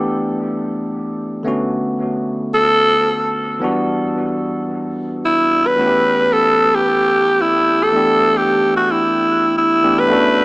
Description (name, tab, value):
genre	amapiano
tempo	111 BPM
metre	4/4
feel	swing 55% on 16ths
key	unclear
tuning	A4 = 441 Hz
part	bell-like tine electric piano	accompaniment	0.0-10.4 s	D3 to G4	-20 LUFS	equal	dub echo
part	raspy alto saxophone	melody	2.5-10.4 s	E4 to B4	-14 LUFS	equal	dub echo
room	moderate spring reverb, RT60 1.8 s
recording	echo-heavy mix, small speaker sound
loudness	-14 LUFS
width	side -25 dB against mid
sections	0.0-1.5 A section; 1.5-10.1 B section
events	drop 0.0-1.5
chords	0.0 G69; 1.5 Bm7; 3.6 Em7; 5.8 A7; 7.9 G69